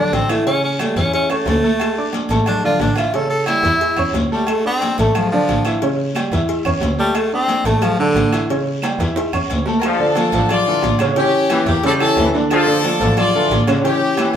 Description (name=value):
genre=latin, salsa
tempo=179 BPM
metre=4/4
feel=straight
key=D harmonic minor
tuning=A4 = 440 Hz
part: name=breathy tenor saxophone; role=melody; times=0.0-8.5 s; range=D3 to A4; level=-19 LUFS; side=equal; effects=none
part: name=clear upright piano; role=accompaniment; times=0.0-14.4 s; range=C#3 to D6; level=-20 LUFS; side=right 1 dB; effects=none
part: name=rich double bass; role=bass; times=0.1-13.6 s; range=A1 to E2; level=-22 LUFS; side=equal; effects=none
part: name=congas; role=percussion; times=0.1-14.3 s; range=none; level=-24 LUFS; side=equal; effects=none
part: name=cowbell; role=percussion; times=0.1-14.3 s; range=none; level=-29 LUFS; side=left 3 dB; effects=none
part: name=guiro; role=percussion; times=0.1-14.3 s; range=none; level=-34 LUFS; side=left 4 dB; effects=none
part: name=timbales and agogo bells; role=percussion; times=0.1-14.4 s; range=none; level=-28 LUFS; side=right 1 dB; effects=none
part: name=claves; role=percussion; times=0.3-14.3 s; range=none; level=-32 LUFS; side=right 2 dB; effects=none
part: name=bright horn section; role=melody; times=9.8-14.3 s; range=Bb3 to D5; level=-18 LUFS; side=left 2 dB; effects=none
part: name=warm trombone section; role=second line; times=9.8-14.4 s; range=D3 to G3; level=-23 LUFS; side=left 2 dB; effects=none
room=wet studio reverb, RT60 0.7 s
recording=band playing live in one room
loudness=-14 LUFS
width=side -9 dB against mid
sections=0.0-9.8 A section; 9.8-14.4 B section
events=tenor saxophone solo 0.0-9.8; drum fill 8.8-9.8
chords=0.5 A7; 1.8 Dsus2; 3.1 A7; 4.5 Dmadd9; 5.8 A7; 7.2 Dsus2; 8.5 A7; 9.8 Dm; 11.2 A7; 12.5 Dm; 13.8 A7 (rootless)